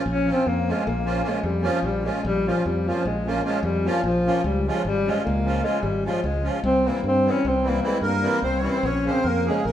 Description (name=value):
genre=balkan folk, Balkan wedding band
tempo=301 BPM (eighths)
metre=11/8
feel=straight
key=Bb dorian sharp4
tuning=A4 = 440 Hz
part: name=musette accordion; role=accompaniment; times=0.0-9.6 s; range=Db3 to F4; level=-27 LUFS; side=right 1 dB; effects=none
part: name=mellow alto saxophone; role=melody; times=0.1-9.7 s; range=F3 to Db4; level=-23 LUFS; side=left 1 dB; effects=none
part: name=modern bright fingered electric bass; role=bass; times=0.1-9.7 s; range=Ab1 to G2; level=-26 LUFS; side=equal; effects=none
part: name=accordion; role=second line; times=8.0-9.7 s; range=Ab4 to Db5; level=-26 LUFS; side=right 2 dB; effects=light tremolo tuning
room=wet stone room reverb, RT60 1.3 s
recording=band playing live in one room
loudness=-20 LUFS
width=side -11 dB against mid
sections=0.1-9.7 A section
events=none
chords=0.1 Bbm; 4.4 Db; 6.6 C; 8.8 Bbm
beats=| 0.06 0.26 0.46 0.66 0.86 1.06 1.26 1.46 1.66 1.86 2.06 | 2.25 2.45 2.65 2.85 3.05 3.25 3.45 3.65 3.85 4.05 4.25 | 4.45 4.65 4.85 5.05 5.25 5.44 5.64 5.84 6.04 6.24 6.44 | 6.64 6.84 7.04 7.24 7.44 7.64 7.84 8.04 8.23 8.43 8.63 | 8.83 9.03 9.23 9.43 9.63